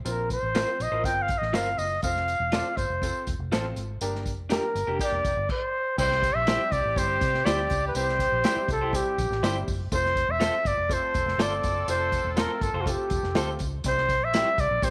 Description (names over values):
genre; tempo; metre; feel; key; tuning
uptempo 1960s-style soul; 122 BPM; 4/4; straight; C mixolydian; A4 = 439 Hz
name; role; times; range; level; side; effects
clear grand piano; accompaniment; 0.0-14.9 s; G3 to D5; -38 LUFS; equal; none
dark trumpet; melody; 0.1-14.9 s; F#4 to G5; -28 LUFS; equal; slapback echo
vintage muted fingered electric bass; bass; 0.1-14.9 s; E1 to C3; -34 LUFS; equal; none
warm soul drum kit; drums; 0.1-14.9 s; crash cymbal, hi-hat, kick drum, snare drum; -33 LUFS; equal; none
tambourine; percussion; 0.1-14.9 s; none; -44 LUFS; equal; none
electric guitar through a small old amp; stabs; 0.5-14.5 s; D4 to C5; -37 LUFS; equal; tremolo
clear horn section; second line; 5.0-14.9 s; Bb3 to Bb4; -39 LUFS; equal; slapback echo
vibraphone with soft mallets; second line; 6.0-14.9 s; none; barely audible; none; none
room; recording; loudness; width
light reverb, small room ambience; none; -26 LUFS; mono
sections
0.0-6.0 A section; 6.0-14.9 B section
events
trumpet solo 0.0-6.0; band accent 4.0-6.0; stop 5.5-6.0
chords
0.1 Bbsus2; 2.0 F; 4.0 Gm; 6.0 C; 9.9 F; 13.8 C